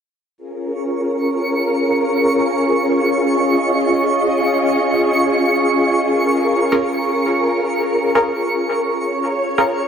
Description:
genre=drum and bass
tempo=free time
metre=none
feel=none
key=Bb minor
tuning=A4 = 439 Hz
part: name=soft string machine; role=sustained chords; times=0.4-9.9 s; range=Db4 to Eb5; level=-16 LUFS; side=left 1 dB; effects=ensemble chorus, vintage 12-bit sampler grit
part: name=twinkling granular texture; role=texture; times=0.8-9.9 s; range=Db6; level=-22 LUFS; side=right 4 dB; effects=built-in reverb
part: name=filtered dub chord stab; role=stabs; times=6.7-9.7 s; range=Db4 to Bb4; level=-20 LUFS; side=equal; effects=phaser, lush chorus, dub echo
room=moderate lush hall reverb, RT60 2.5 s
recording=none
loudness=-15 LUFS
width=side -7 dB against mid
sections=0.4-9.9 A section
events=none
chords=0.4 Bbm7

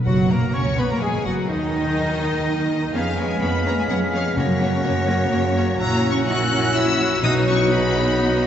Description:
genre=quick classical-period movement for symphony orchestra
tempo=125 BPM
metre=3/4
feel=straight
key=F# major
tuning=A4 = 441 Hz
part: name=timpani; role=percussion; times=0.0-0.7, 4.4-5.0, 7.2-7.9 s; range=F#2 to B2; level=-27 LUFS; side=equal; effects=none
part: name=rich studio violin section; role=melody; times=0.1-8.5 s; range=C#5 to F#6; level=-27 LUFS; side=left 3 dB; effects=none
part: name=bright clarinet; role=second line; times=0.1-8.5 s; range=C#4 to C#5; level=-31 LUFS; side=equal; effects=none
part: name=bright concert flute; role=second line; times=0.1-8.4 s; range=D#5 to B6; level=-31 LUFS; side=left 2 dB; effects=none
part: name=mellow oboe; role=second line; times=0.1-8.5 s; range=D#4 to F#5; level=-31 LUFS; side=equal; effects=none
part: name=rich studio violin section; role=second line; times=0.1-8.5 s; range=D#4 to F#5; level=-31 LUFS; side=left 3 dB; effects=none
part: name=mellow bassoon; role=accompaniment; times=0.1-8.5 s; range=D#3 to C#4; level=-28 LUFS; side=right 1 dB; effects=none
part: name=rich studio viola section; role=accompaniment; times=0.1-8.5 s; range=D#3 to F#4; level=-26 LUFS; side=equal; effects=none
part: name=warm French horn section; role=sustained chords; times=0.1-8.5 s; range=D#3 to E4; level=-29 LUFS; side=left 3 dB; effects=none
part: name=rich studio cello section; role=bass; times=0.1-8.5 s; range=C#3 to F#4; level=-26 LUFS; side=right 1 dB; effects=none
part: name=rich studio double bass section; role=bass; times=0.1-8.5 s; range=F#1 to F#2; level=-26 LUFS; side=right 2 dB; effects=none
room=wet cathedral reverb, RT60 4.5 s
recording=nothing above 7.9 kHz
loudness=-18 LUFS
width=side -9 dB against mid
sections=0.1-8.5 A section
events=none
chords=0.1 F#; 1.5 N.C.; 2.9 C#7/E#; 4.4 F#; 5.8 F#7/A#; 7.2 B

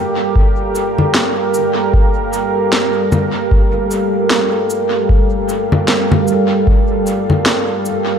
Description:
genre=ambient dub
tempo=76 BPM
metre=4/4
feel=swing 59% on 16ths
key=G minor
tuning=A4 = 441 Hz
part: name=deep dark ambient pad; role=sustained chords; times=0.0-8.2 s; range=G3 to F5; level=-15 LUFS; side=right 1 dB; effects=chorus, built-in reverb
part: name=electronic kick drum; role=drums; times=0.4-6.9 s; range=none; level=-13 LUFS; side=equal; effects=none
part: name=electronic cabasa, congas and snare drum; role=drums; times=0.8-8.0 s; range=none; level=-17 LUFS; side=left 1 dB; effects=dub echo
room=light reverb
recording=none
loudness=-12 LUFS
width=side -7 dB against mid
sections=0.0-8.2 A section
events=none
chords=0.0 Gm7

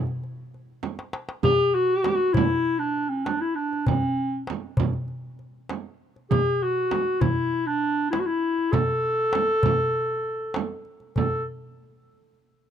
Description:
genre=Arabic maqam ensemble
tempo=99 BPM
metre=4/4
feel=straight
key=A maqam rast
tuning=A4 = 440 Hz
part: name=darbuka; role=percussion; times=0.1-11.4 s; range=none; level=-28 LUFS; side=left 1 dB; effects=none
part: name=frame drum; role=percussion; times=0.8-11.5 s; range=none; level=-28 LUFS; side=right 7 dB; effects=none
part: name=mellow clarinet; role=melody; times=1.4-11.4 s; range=C4+48c to A4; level=-23 LUFS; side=left 1 dB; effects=none
room=small room ambience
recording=dry, close 1970s-style studio recording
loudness=-22 LUFS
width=side -9 dB against mid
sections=0.0-11.2 A section; 11.2-12.7 B section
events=drum fill 0.8-1.4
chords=none

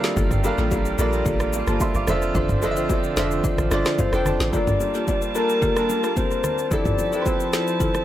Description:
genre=amapiano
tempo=110 BPM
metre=4/4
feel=straight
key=unclear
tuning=A4 = 435 Hz
part: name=bright grand piano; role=accompaniment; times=0.0-8.0 s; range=F3 to D6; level=-26 LUFS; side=right 2 dB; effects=tape echo
part: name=warm studio string section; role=sustained chords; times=0.0-8.0 s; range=D3 to A5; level=-30 LUFS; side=right 2 dB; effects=sidechain pumping
part: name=afro-pop drum kit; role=drums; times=0.0-8.0 s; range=kick drum, rim click, shaker, snare drum, toms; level=-25 LUFS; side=equal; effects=tape echo
part: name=buzzing marimba with medium hard mallets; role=stabs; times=0.2-7.9 s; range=Bb3 to C5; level=-29 LUFS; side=left 3 dB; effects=tape echo
part: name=deep log drum bass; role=bass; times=0.2-4.5 s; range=F1 to Bb1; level=-26 LUFS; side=equal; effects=none
part: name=congas and bongos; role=percussion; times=0.2-7.9 s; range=none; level=-33 LUFS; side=left 2 dB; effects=none
part: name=soft octave-layered synth lead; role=melody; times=4.0-8.0 s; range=Bb4 to D5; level=-24 LUFS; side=left 2 dB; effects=chorus, tape echo
room=light reverb, small room ambience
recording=echo-heavy mix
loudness=-19 LUFS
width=side -12 dB against mid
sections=0.0-4.5 A section; 4.5-8.0 B section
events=drop 0.0-4.5; grand piano fill 3.7-4.5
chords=0.0 Gm9; 2.1 Dm7/F; 4.5 Gm9; 6.7 Fmaj7

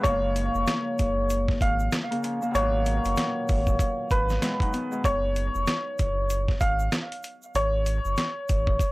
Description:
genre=hip hop, boom-bap hip-hop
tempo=96 BPM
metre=4/4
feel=swing 61% on 16ths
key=unclear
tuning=A4 = 445 Hz
part: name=clear upright piano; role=melody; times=0.0-8.9 s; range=B4 to E#5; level=-27 LUFS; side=equal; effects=high-pass filter, low-pass filter, tape echo
part: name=Celtic harp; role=accompaniment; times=0.0-7.8 s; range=A#2 to D#4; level=-31 LUFS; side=left 1 dB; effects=cassette tape, high-pass filter, low-pass filter
part: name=round analog bass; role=bass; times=0.0-8.8 s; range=E#1 to G#1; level=-28 LUFS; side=equal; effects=tube saturation
part: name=dusty soul sampler-style drum kit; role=drums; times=0.0-8.9 s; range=hi-hat, kick drum, snare drum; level=-26 LUFS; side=equal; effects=none
part: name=tube shaker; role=percussion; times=0.0-8.9 s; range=none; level=-46 LUFS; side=right 4 dB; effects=none
room=little or no reverb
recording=dry, gritty hardware recording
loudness=-23 LUFS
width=side -21 dB against mid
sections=0.0-8.9 A section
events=none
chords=0.0 F#maj7; 2.5 G#m7; 5.0 F#5; 7.5 G#m

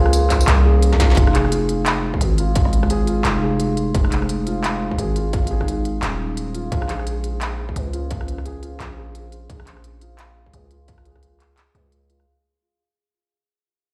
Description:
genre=half-time drum and bass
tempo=173 BPM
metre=4/4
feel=swing 58% on 16ths, half-time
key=F minor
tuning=A4 = 439 Hz
part: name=deep dark ambient pad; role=sustained chords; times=0.0-12.2 s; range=Ab3 to C5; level=-31 LUFS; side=equal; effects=chorus, built-in reverb, sidechain pumping
part: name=felt-muted upright piano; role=arpeggios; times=0.0-12.3 s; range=F4 to Ab4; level=-29 LUFS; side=equal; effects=low-pass filter, digital delay
part: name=growling 808-style bass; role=bass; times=0.0-12.3 s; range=Eb1 to Db2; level=-23 LUFS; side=equal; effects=none
part: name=industrial drum kit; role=drums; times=0.1-12.3 s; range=handclaps, hi-hat, rim click, snare drum, tambourine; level=-27 LUFS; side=equal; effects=studio ambience
part: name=electronic kick drum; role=drums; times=0.3-11.2 s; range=none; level=-23 LUFS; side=equal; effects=distortion, studio ambience
room=light reverb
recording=played on a big sound system in a bare room, stone room reverb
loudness=-20 LUFS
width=mono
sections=0.0-1.2 A section; 1.2-12.3 B section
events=drop 0.0-1.2; drum fill 0.9; fade-out 1.2-12.3; filter sweep on felt piano 1.2-12.3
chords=0.0 Bbmadd9; 1.2 Fm; 6.7 Bbmadd9

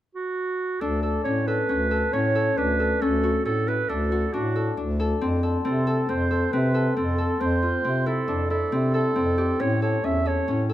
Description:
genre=contemporary instrumental, chamber music in an uneven meter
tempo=136 BPM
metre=5/4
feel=straight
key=D major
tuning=A4 = 438 Hz
part: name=clear clarinet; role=melody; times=0.1-10.7 s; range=F#4 to E5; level=-26 LUFS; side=right 3 dB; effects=none
part: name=Celtic harp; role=arpeggios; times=0.8-10.7 s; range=C4 to A4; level=-25 LUFS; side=left 2 dB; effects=none
part: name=mellow bass clarinet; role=bass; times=0.8-10.7 s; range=D2 to C3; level=-26 LUFS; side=equal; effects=none
room=moderate recital hall reverb, RT60 1.5 s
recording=close, detailed microphones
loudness=-21 LUFS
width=side -13 dB against mid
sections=0.8-10.7 A section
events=none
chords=0.0 N.C.; 0.8 Dmaj7; 5.2 Fmaj7; 9.6 A7

